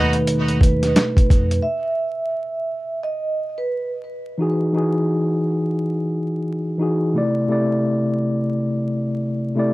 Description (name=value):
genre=hip hop, boom-bap hip-hop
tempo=87 BPM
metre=4/4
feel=swing 61% on 16ths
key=E major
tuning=A4 = 440 Hz
part: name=vibraphone with soft mallets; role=melody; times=0.0-3.9 s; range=B4 to E5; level=-24 LUFS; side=right 3 dB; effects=high-pass filter, low-pass filter, digital delay
part: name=mellow tine electric piano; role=accompaniment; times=0.0-9.7 s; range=B2 to D5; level=-19 LUFS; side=left 1 dB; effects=medium stereo tremolo, high-pass filter, low-pass filter
part: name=upright bass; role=bass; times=0.0-1.6 s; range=D#2 to F2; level=-21 LUFS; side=equal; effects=none
part: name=dusty soul sampler-style drum kit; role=drums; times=0.1-1.6 s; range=hi-hat, kick drum, snare drum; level=-16 LUFS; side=equal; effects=none
room=light reverb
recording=dark, warm production, vinyl crackle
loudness=-18 LUFS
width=side -19 dB against mid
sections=0.0-1.6 A section; 1.6-9.7 B section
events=break 1.6-4.4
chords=0.0 B7; 1.6 Emaj9; 7.2 C69